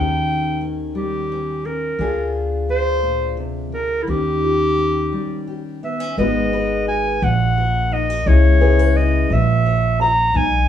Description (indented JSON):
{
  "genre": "acoustic folk-pop ballad",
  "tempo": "58 BPM (dotted quarters)",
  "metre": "6/8",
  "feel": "straight",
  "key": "unclear",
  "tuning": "A4 = 436 Hz",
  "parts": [
    { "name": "bright clarinet", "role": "melody", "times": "0.0-10.7 s", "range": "E4 to A#5", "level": "-20 LUFS", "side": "equal", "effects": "none" },
    { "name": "fingerpicked steel-string acoustic guitar", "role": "accompaniment", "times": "0.0-10.7 s", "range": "G#2 to C#5", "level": "-23 LUFS", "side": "left 4 dB", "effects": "none" },
    { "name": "upright bass", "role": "bass", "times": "0.0-10.7 s", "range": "G#1 to D#2", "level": "-19 LUFS", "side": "equal", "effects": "none" },
    { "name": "felt-muted upright piano", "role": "arpeggios", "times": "4.4-10.7 s", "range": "G4 to A#5", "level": "-27 LUFS", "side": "right 3 dB", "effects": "none" }
  ],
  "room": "light reverb",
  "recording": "band playing live in one room, studio ambience",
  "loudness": "-16 LUFS",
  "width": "side -10 dB against mid",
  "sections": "0.0-6.2 A section; 6.2-10.7 B section",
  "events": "break 5.1-6.2",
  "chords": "0.0 D#7; 2.0 A#7/D; 4.1 D#7; 6.2 G#m7; 7.2 F#/A#; 8.3 C#m7; 9.3 A#dim"
}